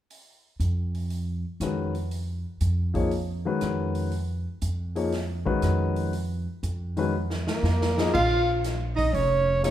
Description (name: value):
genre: modal jazz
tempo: 120 BPM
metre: 4/4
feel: swing 68% on 8ths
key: Bb phrygian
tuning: A4 = 440 Hz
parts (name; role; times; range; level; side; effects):
- swinging big-band drum kit; drums; 0.1-9.7 s; crash cymbal, hi-hat, kick drum, rim click, snare drum; -33 LUFS; equal; none
- upright bass; bass; 0.6-9.7 s; F1 to F2; -27 LUFS; right 1 dB; none
- warm grand piano; accompaniment; 1.6-9.7 s; Eb3 to Eb5; -28 LUFS; left 4 dB; none
- warm soprano saxophone; melody; 7.5-9.7 s; Bb4 to F5; -27 LUFS; right 1 dB; none
- breathy tenor saxophone; second line; 7.5-9.7 s; Bb3 to F4; -27 LUFS; right 3 dB; none
room: moderate large studio reverb, RT60 1.2 s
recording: heard from further back in the room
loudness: -24 LUFS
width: side -12 dB against mid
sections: 0.1-8.1 A section; 8.1-9.7 B section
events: drum fill 7.1-8.1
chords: 0.1 Bbm7 (rootless); 8.1 Bbm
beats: | 0.10 0.60 1.11 1.61 | 2.11 2.61 3.12 3.62 | 4.12 4.62 5.12 5.63 | 6.13 6.63 7.13 7.63 | 8.14 8.64 9.14 9.64